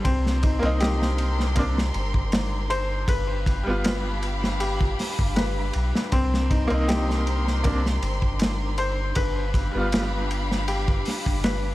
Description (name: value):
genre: trip hop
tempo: 79 BPM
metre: 4/4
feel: swing 53% on 16ths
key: unclear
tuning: A4 = 440 Hz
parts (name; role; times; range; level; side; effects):
- bright upright piano; accompaniment; 0.0-11.7 s; G3 to F4; -29 LUFS; equal; tremolo, tape echo
- warm symphonic violin section; sustained chords; 0.0-11.7 s; G4 to C6; -33 LUFS; equal; none
- felt-muted upright piano; arpeggios; 0.0-11.7 s; C4 to C5; -30 LUFS; left 3 dB; digital delay
- crunchy breakbeat drum kit; drums; 0.0-11.6 s; hi-hat, kick drum, ride cymbal, snare drum; -26 LUFS; equal; high-pass filter on kick, high-pass filter on cymbals, high-pass filter on hats, high-pass filter on snare, high-pass filter on room
- wind-like tuned noise texture; texture; 0.0-11.7 s; D4 to D6; -39 LUFS; equal; built-in reverb
- soft dub sub bass; bass; 0.1-11.7 s; G1 to C2; -26 LUFS; equal; tube saturation
room: small room ambience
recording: vinyl crackle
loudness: -21 LUFS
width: side -16 dB against mid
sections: 0.0-11.7 A section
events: none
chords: 0.0 Cm7; 3.1 G7; 6.1 Cm7; 9.2 G7